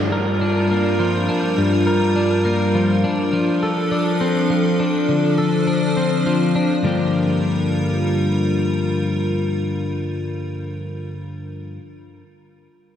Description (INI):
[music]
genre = rock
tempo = 102 BPM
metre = 3/4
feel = straight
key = G minor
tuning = A4 = 440 Hz
[part]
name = icy glass pad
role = sustained chords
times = 0.0-11.1 s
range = F3 to C5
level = -21 LUFS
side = left 1 dB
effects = chorus, built-in reverb
[part]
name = twelve-string electric guitar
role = arpeggios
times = 0.0-11.8 s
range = G2 to Bb4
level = -19 LUFS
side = left 1 dB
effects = digital delay
[sound]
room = wet lush hall reverb, RT60 2.3 s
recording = big arena sound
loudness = -17 LUFS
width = side -9 dB against mid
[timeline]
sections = 0.0-6.8 A section; 6.8-10.3 B section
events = none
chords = 0.0 Gm7; 3.3 F6; 5.1 Dm7; 6.8 Gm7